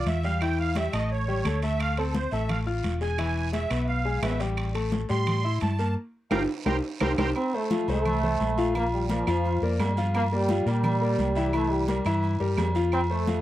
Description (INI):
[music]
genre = latin, salsa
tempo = 172 BPM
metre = 4/4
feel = straight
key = F major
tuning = A4 = 437 Hz
[part]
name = musette accordion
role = melody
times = 0.0-7.3 s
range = A4 to C6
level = -31 LUFS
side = right 4 dB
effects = none
[part]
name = bright concert grand piano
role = accompaniment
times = 0.0-13.4 s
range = E3 to F6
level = -30 LUFS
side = left 4 dB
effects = none
[part]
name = hollow-body short-scale fingered electric bass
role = bass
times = 0.0-13.4 s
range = E1 to Bb2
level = -28 LUFS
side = equal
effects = none
[part]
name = congas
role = percussion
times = 0.1-13.4 s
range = none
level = -33 LUFS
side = left 1 dB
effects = none
[part]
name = guiro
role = percussion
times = 0.1-13.4 s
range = none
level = -45 LUFS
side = right 9 dB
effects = none
[part]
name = timbales and agogo bells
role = percussion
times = 0.1-13.4 s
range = none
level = -34 LUFS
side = right 4 dB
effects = none
[part]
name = claves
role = percussion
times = 0.4-13.1 s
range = none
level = -38 LUFS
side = right 7 dB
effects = none
[part]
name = mellow trombone section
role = melody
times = 7.4-13.4 s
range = F3 to C4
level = -28 LUFS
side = right 2 dB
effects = none
[sound]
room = light reverb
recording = dry, close 1970s-style studio recording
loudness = -24 LUFS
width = side -14 dB against mid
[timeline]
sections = 0.0-7.4 A section; 7.4-13.4 B section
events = accordion solo 0.0-7.4; band accent 6.0-7.4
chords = 0.4 Fmaj9; 1.1 A7; 1.8 Dm9; 3.2 E; 4.6 Am7; 6.0 Gm7; 6.7 C5; 7.4 F; 8.8 Bb; 10.1 Gm7; 11.5 C7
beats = 0.07 | 0.41 0.76 1.10 1.45 | 1.80 2.15 2.49 2.84 | 3.19 3.53 3.88 4.23 | 4.58 4.92 5.27 5.62 | 5.97 6.32 6.66 7.01 | 7.36 7.71 8.05 8.40 | 8.75 9.10 9.45 9.79 | 10.14 10.49 10.84 11.19 | 11.53 11.88 12.23 12.58 | 12.92 13.27